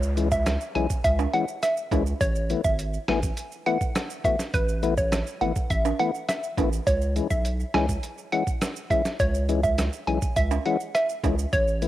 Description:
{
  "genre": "dancehall",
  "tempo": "103 BPM",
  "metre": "4/4",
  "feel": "straight",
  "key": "C# minor",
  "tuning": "A4 = 441 Hz",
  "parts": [
    { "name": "hollow square pluck", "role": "melody", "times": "0.0-11.8 s", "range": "B4 to G#5", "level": "-27 LUFS", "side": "right 1 dB", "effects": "chorus, cassette tape" },
    { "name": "saturated sub bass", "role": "bass", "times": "0.0-11.9 s", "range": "G#1 to C#2", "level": "-27 LUFS", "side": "right 1 dB", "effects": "none" },
    { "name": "maracas and timbales", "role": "percussion", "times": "0.0-11.9 s", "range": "none", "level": "-34 LUFS", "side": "right 9 dB", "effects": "none" },
    { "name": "downlifter", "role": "sound effects", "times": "0.0-2.2 s", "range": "none", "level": "-48 LUFS", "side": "right 1 dB", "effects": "none" },
    { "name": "tonewheel organ", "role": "accompaniment", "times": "0.2-11.9 s", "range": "E3 to F#4", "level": "-29 LUFS", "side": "left 7 dB", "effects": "overdrive, chorus vibrato, slow rotary speaker, cassette tape" },
    { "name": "lo-fi sampler-style drum kit", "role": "drums", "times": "0.2-11.9 s", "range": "hi-hat, kick drum, rim click, snare drum", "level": "-28 LUFS", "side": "right 1 dB", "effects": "cassette tape" }
  ],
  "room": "light reverb, digital ambience",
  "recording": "home recording on cassette",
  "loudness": "-22 LUFS",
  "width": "side -14 dB against mid",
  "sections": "0.0-11.9 A section",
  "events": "none",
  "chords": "0.0 C#m; 2.2 Asus2; 6.9 C#m"
}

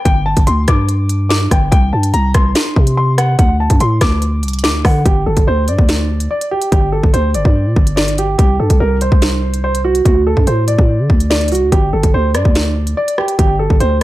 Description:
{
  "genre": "hip hop, drill",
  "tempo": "144 BPM",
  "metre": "4/4",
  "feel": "half-time",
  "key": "unclear",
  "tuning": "A4 = 440 Hz",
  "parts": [
    { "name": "warm grand piano", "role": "melody", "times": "0.1-14.0 s", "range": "F#4 to D6", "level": "-18 LUFS", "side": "right 1 dB", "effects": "none" },
    { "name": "growling 808-style bass", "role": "bass", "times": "0.1-14.0 s", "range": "F#1 to D3", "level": "-15 LUFS", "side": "equal", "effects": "none" },
    { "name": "drill drum kit", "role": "drums", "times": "0.1-13.9 s", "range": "hi-hat, kick drum, rim click, snare drum", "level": "-14 LUFS", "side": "equal", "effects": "none" }
  ],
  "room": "light reverb, digital ambience",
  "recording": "dark, warm production",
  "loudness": "-11 LUFS",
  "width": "side -16 dB against mid",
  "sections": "0.0-5.1 A section; 5.1-14.0 B section",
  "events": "none",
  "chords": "0.0 G5; 1.7 C5; 3.4 D5; 5.1 G5; 8.4 C5; 10.1 D5; 11.7 G5"
}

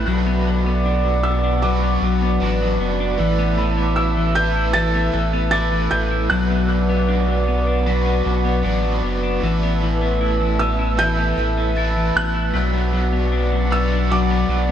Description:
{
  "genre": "dream pop",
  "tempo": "77 BPM",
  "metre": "4/4",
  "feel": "straight",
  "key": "unclear",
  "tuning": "A4 = 440 Hz",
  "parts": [
    { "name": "felt-muted upright piano", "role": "melody", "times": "0.0-14.7 s", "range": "D6 to A6", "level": "-24 LUFS", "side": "right 2 dB", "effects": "digital delay" },
    { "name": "raw garage guitar", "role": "accompaniment", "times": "0.0-14.7 s", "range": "A2 to B4", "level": "-26 LUFS", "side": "right 2 dB", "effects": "overdrive, tremolo, wide subtle chorus" },
    { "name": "warbly tape-like pad", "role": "sustained chords", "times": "0.0-14.7 s", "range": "B4 to E6", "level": "-24 LUFS", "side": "right 1 dB", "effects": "chorus, built-in reverb" },
    { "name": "clean electric guitar", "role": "arpeggios", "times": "0.0-14.7 s", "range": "E3 to E4", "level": "-23 LUFS", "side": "left 6 dB", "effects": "wide subtle chorus, digital delay" },
    { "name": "warm sub bass", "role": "bass", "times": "0.0-14.7 s", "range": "F#1 to B1", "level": "-21 LUFS", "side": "equal", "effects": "none" },
    { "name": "glockenspiel with soft plastic mallets", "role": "texture", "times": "3.6-14.7 s", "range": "B5 to B6", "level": "-35 LUFS", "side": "left 1 dB", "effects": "digital delay" }
  ],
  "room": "light reverb, small room ambience",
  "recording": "nothing above 10.4 kHz",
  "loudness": "-17 LUFS",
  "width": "side -10 dB against mid",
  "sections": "0.0-14.7 A section",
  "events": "none",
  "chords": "0.1 Bm; 3.2 Asus2; 6.3 Bm; 9.4 Asus2; 12.5 Bm"
}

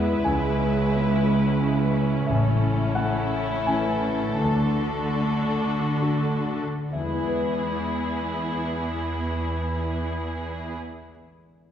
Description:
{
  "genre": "cinematic",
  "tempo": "64-90 BPM",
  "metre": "3/4",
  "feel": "rubato",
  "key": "E mixolydian",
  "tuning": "A4 = 440 Hz",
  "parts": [
    { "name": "rich studio violin section", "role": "second line", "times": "0.0-10.7 s", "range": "E4 to B4", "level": "-30 LUFS", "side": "left 2 dB", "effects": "none" },
    { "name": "warm concert grand piano", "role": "accompaniment", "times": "0.0-11.7 s", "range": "A1 to A5", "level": "-28 LUFS", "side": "left 1 dB", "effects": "none" },
    { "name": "warm symphonic viola section", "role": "accompaniment", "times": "0.0-10.7 s", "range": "E3 to D4", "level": "-28 LUFS", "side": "right 1 dB", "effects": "none" },
    { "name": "concert harp", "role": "arpeggios", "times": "0.0-11.0 s", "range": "A2 to B4", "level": "-31 LUFS", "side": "equal", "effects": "none" },
    { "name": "rich studio cello section", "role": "bass", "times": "0.0-10.7 s", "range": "C#2 to D3", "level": "-29 LUFS", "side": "right 1 dB", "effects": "none" }
  ],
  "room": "wet recital hall reverb, RT60 1.6 s",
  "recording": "recorded in a church or concert hall",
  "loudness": "-22 LUFS",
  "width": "side -9 dB against mid",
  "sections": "0.0-6.9 A section; 6.9-11.7 B section",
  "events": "slowing down 1.3-6.9",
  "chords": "0.2 C#m7; 2.3 A; 4.4 D; 6.9 E"
}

